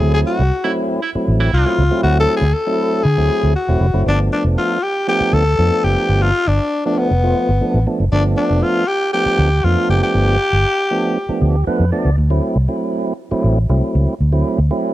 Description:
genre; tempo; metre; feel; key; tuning
funk; 118 BPM; 4/4; straight; unclear; A4 = 441 Hz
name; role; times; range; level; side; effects
growling tenor saxophone; melody; 0.0-11.6 s; B3 to A4; -18 LUFS; left 2 dB; none
tonewheel organ; stabs; 0.0-14.9 s; F3 to D5; -20 LUFS; right 2 dB; slow rotary speaker
vintage muted fingered electric bass; bass; 0.0-14.7 s; E1 to D3; -15 LUFS; equal; none
clear baritone saxophone; second line; 0.6-1.7 s; E4; -24 LUFS; right 5 dB; none
room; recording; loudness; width
studio ambience; dry, close 1970s-style studio recording; -14 LUFS; side -15 dB against mid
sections
0.0-4.1 A section; 4.1-12.2 B section; 12.2-14.9 C section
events
tenor saxophone solo 0.0-4.1; tonewheel organ fill 11.2-12.2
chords
0.0 D9; 4.1 G9; 12.2 D9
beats
| 0.01 0.52 1.03 1.53 | 2.04 2.54 3.05 3.56 | 4.07 4.57 5.08 5.59 | 6.09 6.60 7.11 7.62 | 8.12 8.63 9.14 9.64 | 10.15 10.66 11.16 11.67 | 12.18 12.68 13.19 13.70 | 14.20 14.71

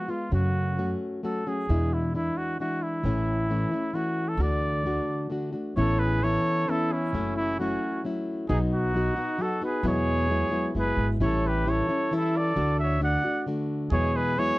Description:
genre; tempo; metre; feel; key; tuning
mexican folk, mariachi; 133 BPM; 3/4; straight; D major, A major from 5.8 s; A4 = 440 Hz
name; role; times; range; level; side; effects
clear trumpet; melody; 0.0-14.6 s; E4 to F#5; -29 LUFS; equal; none
nylon-string guitar; accompaniment; 0.0-14.6 s; E2 to F#4; -28 LUFS; left 1 dB; none
upright bass; bass; 0.3-14.5 s; F#1 to F#2; -28 LUFS; right 1 dB; none
clear trumpet; second line; 5.8-14.6 s; C#4 to D5; -34 LUFS; right 4 dB; none
room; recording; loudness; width
light reverb; dry, close 1970s-style studio recording; -24 LUFS; side -19 dB against mid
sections
0.0-5.8 A section; 5.8-14.6 B section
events
none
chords
0.3 F#m; 1.7 E7; 3.0 A; 4.4 D; 5.8 Aadd9; 7.1 F#m7; 8.5 B; 9.8 Eadd9; 11.2 A7; 12.6 D; 13.9 Eadd9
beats
| 0.33 0.79 1.24 | 1.70 2.15 2.60 | 3.05 3.50 3.95 | 4.41 4.86 5.32 | 5.77 6.23 6.69 | 7.14 7.59 8.04 | 8.49 8.94 9.39 | 9.84 10.29 10.74 | 11.20 11.66 12.11 | 12.57 13.02 13.46 | 13.91 14.37

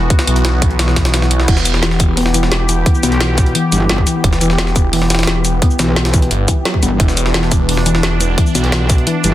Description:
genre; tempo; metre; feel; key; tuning
dark technical drum and bass; 174 BPM; 4/4; straight; E minor; A4 = 440 Hz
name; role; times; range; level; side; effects
sweeping resonant pad; sustained chords; 0.0-9.3 s; E3 to G4; -20 LUFS; equal; chorus, sidechain pumping
phased detuned saw bass; bass; 0.0-8.4 s; E1 to B1; -16 LUFS; equal; phaser, sidechain pumping
drum and bass drum kit; drums; 0.1-9.3 s; cabasa, crash cymbal, hi-hat, snare drum; -19 LUFS; equal; none
electronic kick drum; drums; 0.1-9.0 s; none; -14 LUFS; equal; none
jungle sampler-style drum kit; drums; 0.1-9.3 s; hi-hat, snare drum; -22 LUFS; equal; high-pass filter on hats, high-pass filter on snare
soft round pluck; arpeggios; 1.5-9.3 s; E3 to B3; -20 LUFS; left 3 dB; chorus, sidechain pumping, dub echo
metallic wobble bass; bass; 3.0-9.3 s; G1 to B1; -16 LUFS; equal; chorus
room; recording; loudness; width
light reverb, digital ambience; dense, heavily limited modern master; -11 LUFS; side -14 dB against mid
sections
0.0-9.3 A section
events
kick drops out 1.1-1.5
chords
0.0 Em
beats
| 0.10 0.45 0.79 1.14 | 1.48 1.83 2.17 2.52 | 2.86 3.21 3.55 3.90 | 4.24 4.58 4.93 5.28 | 5.62 5.96 6.31 6.65 | 7.00 7.34 7.69 8.03 | 8.38 8.72 9.07

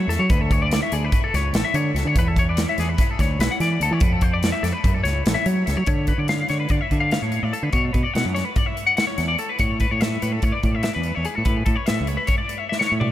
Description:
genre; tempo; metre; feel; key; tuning
math rock and midwest emo; 290 BPM (eighths); 9/8; straight; unclear; A4 = 442 Hz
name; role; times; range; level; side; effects
twelve-string electric guitar; arpeggios; 0.0-13.1 s; G#4 to F#5; -24 LUFS; left 4 dB; tremolo, ping-pong delay
growling fingered electric bass; bass; 0.0-13.1 s; A1 to F#3; -23 LUFS; right 1 dB; overdrive
modern studio drum kit; drums; 0.1-13.1 s; hi-hat, kick drum, snare drum, toms; -23 LUFS; equal; none
room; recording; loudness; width
light reverb, small room ambience; none; -19 LUFS; side -13 dB against mid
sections
0.0-5.9 A section; 5.9-13.1 B section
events
drum fill 12.7-13.1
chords
0.3 D5; 2.2 E7sus4; 4.0 F6; 4.8 A6; 5.9 Dm6; 7.7 Bm; 9.6 Aadd9; 11.5 Bm11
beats
0.10 | 0.30 0.51 0.72 0.92 1.13 1.34 1.54 1.75 1.96 | 2.16 2.37 2.58 2.78 2.99 3.19 3.40 3.61 3.81 | 4.02 4.22 4.43 4.64 4.84 5.05 5.26 5.46 5.67 | 5.88 6.08 6.29 6.50 6.70 6.91 7.12 7.32 7.53 | 7.74 7.94 8.15 8.36 8.56 8.77 8.98 9.18 9.39 | 9.60 9.80 10.01 10.22 10.43 10.63 10.84 11.05 11.25 | 11.46 11.67 11.87 12.08 12.29 12.49 12.70 12.91

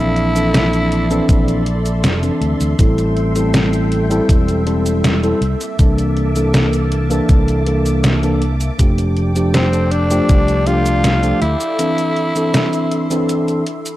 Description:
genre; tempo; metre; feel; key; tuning
vaporwave; 80 BPM; 4/4; straight; unclear; A4 = 439 Hz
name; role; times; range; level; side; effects
raspy tenor saxophone; melody; 0.0-2.0, 9.5-14.0 s; C4 to F4; -20 LUFS; equal; vintage 12-bit sampler grit, analog delay
mellow tine electric piano; accompaniment; 0.0-13.6 s; E3 to A4; -18 LUFS; equal; wide subtle chorus, analog delay
soft string machine; sustained chords; 0.0-14.0 s; Bb3 to D6; -27 LUFS; left 1 dB; phaser, ensemble chorus
fingered electric bass; bass; 0.0-11.5 s; E1 to D2; -17 LUFS; equal; none
detuned 8-bit digital drum machine; drums; 0.2-14.0 s; cabasa, hi-hat, snare drum; -19 LUFS; equal; none
electronic kick drum; drums; 1.3-10.4 s; none; -13 LUFS; equal; none
room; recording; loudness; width
light reverb, digital ambience; none; -13 LUFS; side -15 dB against mid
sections
0.0-14.0 A section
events
break 11.8-14.0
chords
0.0 Bbmaj9#11; 2.8 Am7; 5.4 C13; 8.8 F69; 11.8 Amadd11/E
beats
0.54 1.29 2.04 | 2.79 3.54 4.29 5.04 | 5.79 6.54 7.29 8.04 | 8.79 9.54 10.29 11.04 | 11.79 12.54 13.29

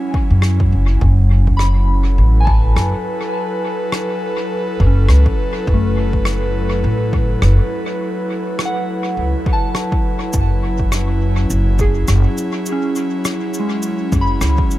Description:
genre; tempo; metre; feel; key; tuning
ambient dub; 103 BPM; 4/4; swing 58% on 16ths; F# minor; A4 = 438 Hz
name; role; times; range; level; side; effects
airy breathy pad; sustained chords; 0.0-14.8 s; F#3 to B4; -22 LUFS; equal; chorus
soft synth bell; arpeggios; 0.0-14.8 s; G#3 to B5; -25 LUFS; left 1 dB; chorus, dub echo
electronic kick drum; drums; 0.1-14.7 s; none; -19 LUFS; equal; overdrive
upright bass; bass; 0.3-14.6 s; F#1 to F#2; -14 LUFS; equal; none
rim click and cabasa; drums; 0.4-14.8 s; none; -26 LUFS; left 1 dB; dub echo
room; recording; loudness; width
little or no reverb; echo-heavy mix; -14 LUFS; side -15 dB against mid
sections
0.0-14.8 A section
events
none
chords
0.0 C#m/F#; 1.0 F#m11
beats
0.43 | 1.01 1.60 2.18 2.76 | 3.34 3.93 4.51 5.09 | 5.67 6.26 6.84 7.42 | 8.01 8.59 9.17 9.75 | 10.34 10.92 11.50 12.08 | 12.66 13.25 13.83 14.41

